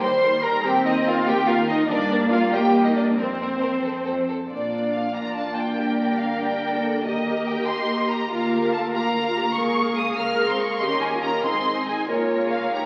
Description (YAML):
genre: quick classical-period movement for string orchestra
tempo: 95 BPM (dotted quarters)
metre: 6/8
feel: straight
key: Bb major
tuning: A4 = 442 Hz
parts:
  - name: warm symphonic violin section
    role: melody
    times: 0.0-12.8 s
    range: A4 to F6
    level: -30 LUFS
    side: equal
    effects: none
  - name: rich symphonic violin section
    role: second line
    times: 0.0-12.9 s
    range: F4 to C6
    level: -28 LUFS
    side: equal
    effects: none
  - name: warm symphonic viola section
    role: accompaniment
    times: 0.0-12.9 s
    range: G3 to Ab4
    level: -27 LUFS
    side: equal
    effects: none
  - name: dark symphonic cello section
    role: bass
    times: 0.0-12.9 s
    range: C4 to C5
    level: -29 LUFS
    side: equal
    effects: none
  - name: warm symphonic double bass section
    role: bass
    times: 0.0-12.9 s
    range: G1 to G2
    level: -38 LUFS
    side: equal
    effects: none
room: wet scoring stage reverb, RT60 1.7 s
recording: very old 78 rpm record, vinyl crackle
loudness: -22 LUFS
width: mono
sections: 0.0-4.5 A section; 4.5-12.9 B section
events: none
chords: 0.0 Eb; 0.6 Gm/Eb; 1.9 Gm; 2.5 Cm; 3.2 Fsus4; 4.5 Bb; 5.8 Gm; 7.1 Eb; 8.3 Bb/D; 9.6 Bbm7/Db; 10.8 Eb7; 11.5 Ab; 12.1 Bbm/Db